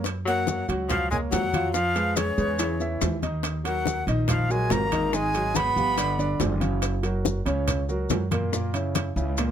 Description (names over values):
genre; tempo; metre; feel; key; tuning
Afro-Cuban jazz; 142 BPM; 4/4; straight; F# major; A4 = 441 Hz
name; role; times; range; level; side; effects
upright bass; bass; 0.0-9.5 s; F#1 to Gb2; -28 LUFS; equal; none
bongos; percussion; 0.0-9.5 s; none; -32 LUFS; left 8 dB; none
congas; percussion; 0.1-9.5 s; none; -32 LUFS; left 2 dB; none
maracas; percussion; 0.1-9.5 s; none; -35 LUFS; left 5 dB; none
timbales; percussion; 0.1-9.5 s; none; -33 LUFS; right 8 dB; none
breathy bright jazz flute; melody; 0.3-6.4 s; C#5 to B5; -27 LUFS; right 1 dB; none
warm tenor saxophone; second line; 0.3-6.4 s; C#3 to B3; -31 LUFS; left 6 dB; none
warm baby grand piano; accompaniment; 0.3-9.5 s; A#2 to F#5; -29 LUFS; right 1 dB; none
room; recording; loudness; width
little or no reverb; close, detailed microphones; -23 LUFS; side -9 dB against mid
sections
0.1-9.5 A section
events
none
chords
0.1 F#maj7; 1.7 Fdim; 2.6 C#madd9; 3.4 D#m; 5.1 G#m7; 6.0 G; 6.8 F#; 8.5 F#7